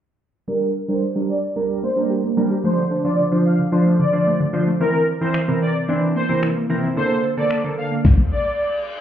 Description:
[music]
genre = dance-pop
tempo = 111 BPM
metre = 4/4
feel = straight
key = G dorian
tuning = A4 = 439 Hz
[part]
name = soft supersaw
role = melody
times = 0.5-8.7 s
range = Bb4 to F5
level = -23 LUFS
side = equal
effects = phaser, sidechain pumping, low-pass filter, tape echo
[part]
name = chorused retro synth keys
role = accompaniment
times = 0.5-7.9 s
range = D3 to C5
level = -20 LUFS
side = right 1 dB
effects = sidechain pumping, low-pass filter
[part]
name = wide unison pluck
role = arpeggios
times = 0.5-8.0 s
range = C3 to A4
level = -25 LUFS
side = equal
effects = phaser, sidechain pumping, low-pass filter, tape echo
[part]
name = pop drum kit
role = drums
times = 5.3-8.2 s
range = finger snaps, kick drum, snare drum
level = -16 LUFS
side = left 1 dB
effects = none
[part]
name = reverse cymbal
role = sound effects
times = 8.2-9.0 s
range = none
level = -35 LUFS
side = left 5 dB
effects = none
[sound]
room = light reverb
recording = heard muffled through a wall, club reverb, EQ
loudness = -17 LUFS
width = side -10 dB against mid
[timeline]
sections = 0.5-9.0 A section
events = filter sweep 0.5-9.0; reverse cymbal 8.2-9.0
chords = 0.5 Gm; 2.6 Dm7; 4.8 C7; 7.0 Bbmaj7

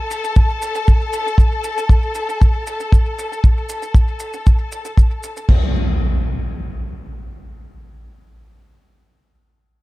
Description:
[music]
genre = nu-disco, nu disco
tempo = 117 BPM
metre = 4/4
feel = straight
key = unclear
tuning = A4 = 440 Hz
[part]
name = warm studio string section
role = sustained chords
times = 0.0-5.5 s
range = A4 to A5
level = -24 LUFS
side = left 2 dB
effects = sidechain pumping
[part]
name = hi-hat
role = drums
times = 0.1-5.5 s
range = none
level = -38 LUFS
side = right 5 dB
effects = low-pass filter on hats, low-pass filter on snare, low-pass filter on room
[part]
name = maracas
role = percussion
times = 0.1-5.5 s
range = none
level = -36 LUFS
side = right 2 dB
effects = analog delay
[part]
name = damped 70s drum kit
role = drums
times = 0.4-5.6 s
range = crash cymbal, kick drum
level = -12 LUFS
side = equal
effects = none
[part]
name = impact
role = sound effects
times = 5.5-8.6 s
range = none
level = -22 LUFS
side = equal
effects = none
[sound]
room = studio reverb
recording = echo-heavy mix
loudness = -15 LUFS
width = side -19 dB against mid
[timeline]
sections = 0.0-5.5 A section; 5.5-9.6 B section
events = filter sweep on drum 0.0-5.5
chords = none

